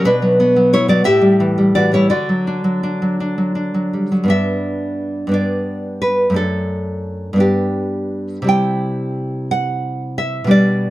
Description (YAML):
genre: romantic piece for solo classical guitar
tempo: 53-61 BPM (dotted quarters)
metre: 6/8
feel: rubato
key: D major, G major from 4.3 s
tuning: A4 = 440 Hz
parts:
  - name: nylon-string guitar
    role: solo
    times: 0.0-10.9 s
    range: F#2 to G5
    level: -15 LUFS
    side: equal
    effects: none
room: moderate studio reverb, RT60 0.9 s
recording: none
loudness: -15 LUFS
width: side -16 dB against mid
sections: 0.0-4.3 A section; 4.3-10.9 B section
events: none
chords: 0.1 Bm; 1.1 A5; 2.1 D; 4.3 G; 6.4 D/F#; 7.4 G; 8.5 C